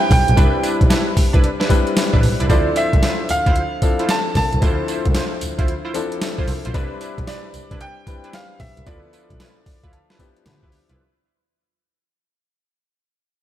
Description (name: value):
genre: R&B, new jack swing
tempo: 113 BPM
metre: 4/4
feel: swing 65% on 16ths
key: D dorian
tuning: A4 = 443 Hz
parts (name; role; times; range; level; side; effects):
- bright grand piano; melody; 0.0-10.4 s; D5 to A5; -22 LUFS; right 2 dB; slapback echo
- warm concert grand piano; accompaniment; 0.0-11.0 s; F3 to B5; -24 LUFS; left 5 dB; slapback echo
- dark double bass; bass; 0.1-11.0 s; A1 to D3; -21 LUFS; equal; none
- boom bap sampler-style drum kit; drums; 0.1-11.0 s; hi-hat, kick drum, snare drum, tambourine; -18 LUFS; equal; none
- funky polysynth comp; stabs; 0.4-11.0 s; D4 to C5; -27 LUFS; right 3 dB; chorus, tape echo
room: light reverb, small room ambience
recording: none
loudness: -15 LUFS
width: side -12 dB against mid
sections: 0.0-11.0 A section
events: fade-out 0.0-11.0; grand piano fill 9.4-11.0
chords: 0.0 Cmaj9; 2.5 Dm9; 6.7 Cmaj9; 8.9 Dm69